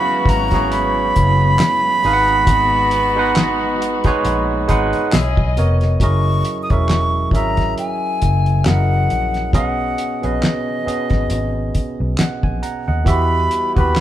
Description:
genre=R&B, neo-soul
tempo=68 BPM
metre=4/4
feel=swing 56% on 16ths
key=unclear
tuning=A4 = 441 Hz
part: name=breathy silver concert flute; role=melody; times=0.0-14.0 s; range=D#5 to D#6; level=-19 LUFS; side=equal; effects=none
part: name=barky tine electric piano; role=accompaniment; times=0.0-14.0 s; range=B2 to A#5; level=-21 LUFS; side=right 4 dB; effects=none
part: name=muted studio string section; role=sustained chords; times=0.0-6.0, 13.1-14.0 s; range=C#3 to D#5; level=-28 LUFS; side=left 4 dB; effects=none
part: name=clear horn section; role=stabs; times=0.0-5.6 s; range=B3 to G#4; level=-25 LUFS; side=left 2 dB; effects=none
part: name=vintage muted fingered electric bass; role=bass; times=0.3-14.0 s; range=E1 to E2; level=-19 LUFS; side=equal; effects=none
part: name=cloth-damped thuddy drum kit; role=drums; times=0.3-14.0 s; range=handclaps, hi-hat, kick drum, snare drum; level=-18 LUFS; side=equal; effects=none
room=light reverb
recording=band playing live in one room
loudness=-14 LUFS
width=side -12 dB against mid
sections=0.0-6.0 A section; 6.0-14.0 B section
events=none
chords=0.0 F#9sus4; 2.0 G#m9; 5.1 Bmaj9; 6.0 F#13; 9.5 B69; 13.1 Emadd9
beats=0.71 1.59 | 2.47 3.35 4.24 5.12 | 6.00 6.88 7.77 8.65 | 9.53 10.41 11.29 12.18 | 13.06 13.94

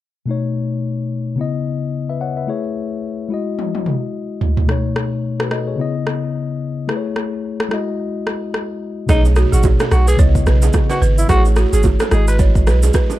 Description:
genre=afrobeats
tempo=109 BPM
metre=4/4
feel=swing 58% on 16ths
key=unclear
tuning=A4 = 440 Hz
part: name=mellow tine electric piano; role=accompaniment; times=0.3-13.2 s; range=B2 to F#5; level=-22 LUFS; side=left 5 dB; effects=none
part: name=deep house drum kit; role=drums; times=3.6-13.2 s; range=kick drum, rim click, shaker, toms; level=-18 LUFS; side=equal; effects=overdrive
part: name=growling alto saxophone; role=melody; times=9.1-12.4 s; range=D#4 to B4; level=-23 LUFS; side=equal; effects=tape echo
part: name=balafon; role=riff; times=9.1-13.0 s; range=F#4 to C#5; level=-23 LUFS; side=right 7 dB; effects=tape echo
part: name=punchy sub bass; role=bass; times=9.1-12.9 s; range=G#1 to C#2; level=-14 LUFS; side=right 1 dB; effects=none
part: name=congas and bongos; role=percussion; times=9.1-13.2 s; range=none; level=-26 LUFS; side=right 7 dB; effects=none
room=little or no reverb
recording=dark, warm production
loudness=-15 LUFS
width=side -15 dB against mid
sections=0.3-9.1 A section; 9.1-13.2 B section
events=drum fill 3.6-4.7; break 8.0-9.1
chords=0.3 B9; 1.4 C#m9; 2.5 Amaj7; 3.3 Emaj7/G#; 4.7 B9; 5.8 C#m9; 6.9 Amaj7; 7.7 Emaj7/G#; 9.1 B9; 10.2 C#m9; 11.3 Amaj7; 12.1 Emaj7/G#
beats=| 0.28 0.83 1.39 1.94 | 2.48 3.04 3.59 4.14 | 4.69 5.24 5.79 6.34 | 6.89 7.44 7.99 8.54 | 9.09 9.64 10.19 10.74 | 11.29 11.84 12.39 12.94

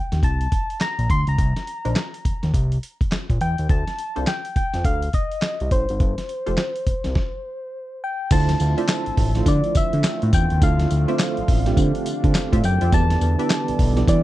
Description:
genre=R&B, new jack swing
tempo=104 BPM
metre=4/4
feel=swing 62% on 16ths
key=C dorian, D dorian from 8.3 s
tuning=A4 = 438 Hz
part: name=soft struck synth lead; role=melody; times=0.0-14.2 s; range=C5 to C6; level=-27 LUFS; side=left 2 dB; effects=chorus, slapback echo
part: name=fat analog bass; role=bass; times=0.1-14.2 s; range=F1 to E3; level=-21 LUFS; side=equal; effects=none
part: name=dusty soul sampler-style drum kit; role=drums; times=0.1-14.2 s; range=crash cymbal, handclaps, hi-hat, kick drum, snare drum, tambourine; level=-21 LUFS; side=equal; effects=none
part: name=funky polysynth comp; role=stabs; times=1.8-13.5 s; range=D4 to E5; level=-29 LUFS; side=equal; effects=chorus, slapback echo
part: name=soft electric-piano-like synth keys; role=accompaniment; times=8.3-14.2 s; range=A3 to D5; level=-26 LUFS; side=right 6 dB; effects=chorus, tremolo
part: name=sweeping resonant pad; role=sustained chords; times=8.3-14.2 s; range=D3 to E5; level=-30 LUFS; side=left 1 dB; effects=chorus, phaser
room=little or no reverb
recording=dry, close 1970s-style studio recording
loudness=-18 LUFS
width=side -15 dB against mid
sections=0.0-8.3 A section; 8.3-14.2 B section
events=stop 7.2-8.3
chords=0.0 Cm9; 3.7 Dm7; 6.0 G9sus4; 8.3 Dm9; 12.9 Em7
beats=0.23 0.81 | 1.39 1.96 2.54 3.12 | 3.69 4.27 4.85 5.42 | 6.00 6.58 7.16 7.73 | 8.31 8.89 9.46 10.04 | 10.62 11.19 11.77 12.35 | 12.93 13.50 14.08

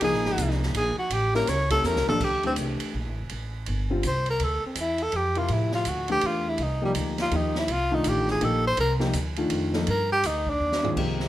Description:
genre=modal jazz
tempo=164 BPM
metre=3/4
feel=swing 63% on 8ths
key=D phrygian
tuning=A4 = 440 Hz
part: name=breathy tenor saxophone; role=melody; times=0.0-10.9 s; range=G3 to C#5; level=-25 LUFS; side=equal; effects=none
part: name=warm baby grand piano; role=accompaniment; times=0.0-11.3 s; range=C3 to Bb4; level=-29 LUFS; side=left 2 dB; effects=none
part: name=upright bass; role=bass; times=0.0-11.3 s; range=F1 to A2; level=-29 LUFS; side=equal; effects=none
part: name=open jazz drum kit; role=drums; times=0.0-11.3 s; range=crash cymbal, hi-hat, kick drum, ride cymbal, snare drum, toms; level=-33 LUFS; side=right 3 dB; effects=none
room=moderate club reverb, RT60 0.8 s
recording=none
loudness=-23 LUFS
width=side -14 dB against mid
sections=0.0-2.2 A section; 2.2-11.0 A section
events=tenor saxophone solo 0.0-11.0; drum fill 1.8-2.2, 10.6-11.0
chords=0.0 Bb9sus4; 1.1 A7b9; 2.2 Dm11; 6.6 Cm11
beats=| 0.02 0.38 0.75 | 1.11 1.48 1.84 | 2.21 2.57 2.94 | 3.30 3.67 4.04 | 4.40 4.77 5.13 | 5.50 5.86 6.23 | 6.59 6.96 7.32 | 7.69 8.05 8.42 | 8.78 9.15 9.51 | 9.88 10.24 10.61 | 10.97

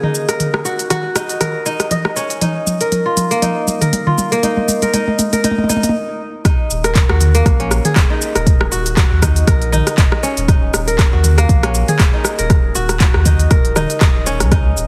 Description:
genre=afro house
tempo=119 BPM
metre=4/4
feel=swing 56% on 16ths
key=Eb minor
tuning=A4 = 439 Hz
part: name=kora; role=arpeggios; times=0.0-14.9 s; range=Bb3 to Eb5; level=-22 LUFS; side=equal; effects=sidechain pumping, low-pass filter, dub echo
part: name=afro-pop drum kit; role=drums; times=0.0-14.9 s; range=handclaps, hi-hat, rim click, shaker, toms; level=-20 LUFS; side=equal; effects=none
part: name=electronic kick drum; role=drums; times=6.4-14.6 s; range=none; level=-15 LUFS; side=equal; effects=none
part: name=warm sub bass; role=bass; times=6.7-14.9 s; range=Eb1 to Eb2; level=-19 LUFS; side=equal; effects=sidechain pumping
room=light reverb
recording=heavily compressed radio sound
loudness=-15 LUFS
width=mono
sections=0.0-6.4 A section; 6.4-14.9 B section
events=build-up 0.0-6.4; drum fill 0.0-5.9; stop 5.9-6.4; drop 6.4-14.9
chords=0.0 Ebsus2; 6.4 Eb5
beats=| 0.40 0.90 1.41 1.91 | 2.42 2.92 3.42 3.93 | 4.43 4.94 5.44 5.95 | 6.45 6.95 7.46 7.96 | 8.47 8.97 9.47 9.98 | 10.48 10.99 11.49 11.99 | 12.50 13.00 13.51 14.01 | 14.52

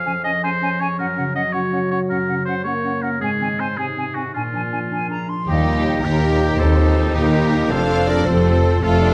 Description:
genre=cinematic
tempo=107 BPM (dotted quarters)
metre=12/8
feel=straight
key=Gb lydian, Eb lydian from 5.5 s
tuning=A4 = 440 Hz
part: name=warm oboe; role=second line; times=0.0-9.1 s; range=Eb4 to F5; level=-27 LUFS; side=equal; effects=none
part: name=mellow trombone section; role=sustained chords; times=0.0-9.1 s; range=Bb2 to Eb4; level=-29 LUFS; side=equal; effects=none
part: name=concert harp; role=arpeggios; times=0.0-9.1 s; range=F2 to A5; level=-31 LUFS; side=equal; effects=none
part: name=dark clarinet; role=second line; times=0.1-9.1 s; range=Bb3 to A4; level=-30 LUFS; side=equal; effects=none
part: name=silver concert flute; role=second line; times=0.1-5.5 s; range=Gb5 to C6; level=-30 LUFS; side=equal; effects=none
part: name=warm symphonic violin section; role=melody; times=5.5-9.1 s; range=Eb4 to C5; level=-30 LUFS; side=equal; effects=none
part: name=rich symphonic violin section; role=second line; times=5.5-9.1 s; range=G4 to F5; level=-29 LUFS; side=equal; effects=none
part: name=mellow French horn section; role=sustained chords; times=5.5-9.1 s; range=G3 to F4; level=-28 LUFS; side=equal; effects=none
part: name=clear trumpet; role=stabs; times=5.5-9.1 s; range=G4 to A4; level=-27 LUFS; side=equal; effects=none
part: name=rich studio double bass section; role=bass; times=5.5-9.1 s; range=F1 to Eb2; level=-23 LUFS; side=equal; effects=none
part: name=rich symphonic cello section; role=bass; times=5.5-9.1 s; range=Eb2 to F2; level=-22 LUFS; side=equal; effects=none
part: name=clear symphonic viola section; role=accompaniment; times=6.6-9.1 s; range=C4 to F4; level=-30 LUFS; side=equal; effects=none
room=moderate scoring stage reverb, RT60 2.0 s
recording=none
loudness=-19 LUFS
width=mono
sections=0.0-5.5 A section; 5.5-9.1 B section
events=none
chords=0.0 Db/F; 1.0 Gb; 3.2 Ab; 4.3 Bb7; 5.5 Eb; 7.7 F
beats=0.42 | 0.98 1.53 2.09 2.65 | 3.21 3.77 4.34 4.91 | 5.48 6.04 6.60 7.16 | 7.71 8.27 8.83

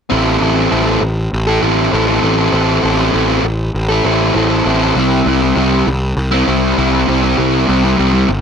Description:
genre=rock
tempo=99 BPM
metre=4/4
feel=straight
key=A minor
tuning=A4 = 438 Hz
part: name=fuzz guitar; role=riff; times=0.1-8.3 s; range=G3 to A4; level=-13 LUFS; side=equal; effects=distortion
part: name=fuzz picked electric bass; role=bass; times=0.1-8.4 s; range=G1 to C2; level=-16 LUFS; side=equal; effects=overdrive
room=light reverb, digital ambience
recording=none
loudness=-11 LUFS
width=side -7 dB against mid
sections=0.1-8.4 A section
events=none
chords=0.1 Am; 5.0 C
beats=| 0.10 0.71 1.32 1.92 | 2.53 3.13 3.74 4.35 | 4.95 5.56 6.17 6.78 | 7.38 7.99

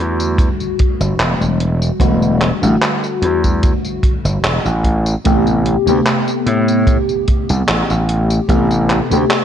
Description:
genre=vaporwave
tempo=74 BPM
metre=4/4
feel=swing 53% on 16ths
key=A dorian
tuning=A4 = 440 Hz
part: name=FM electric piano with soft pad layer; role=accompaniment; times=0.0-9.4 s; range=C3 to G4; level=-17 LUFS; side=left 1 dB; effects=phaser, wide subtle chorus, tape echo
part: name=gritty slap bass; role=bass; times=0.0-9.2 s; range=E1 to A2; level=-16 LUFS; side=equal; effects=overdrive
part: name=detuned 8-bit digital drum machine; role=drums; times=0.2-9.4 s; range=handclaps, hi-hat, tambourine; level=-20 LUFS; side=equal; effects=vintage 12-bit sampler grit, gated reverb
part: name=kick drum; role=drums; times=0.4-8.7 s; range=none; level=-17 LUFS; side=equal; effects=vintage 12-bit sampler grit
room=light reverb, small room ambience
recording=cassette tape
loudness=-13 LUFS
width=side -9 dB against mid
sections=0.0-9.4 A section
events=none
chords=0.0 Em11; 4.8 Am9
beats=0.39 1.20 | 2.01 2.82 3.63 4.44 | 5.25 6.06 6.87 7.68 | 8.49 9.30

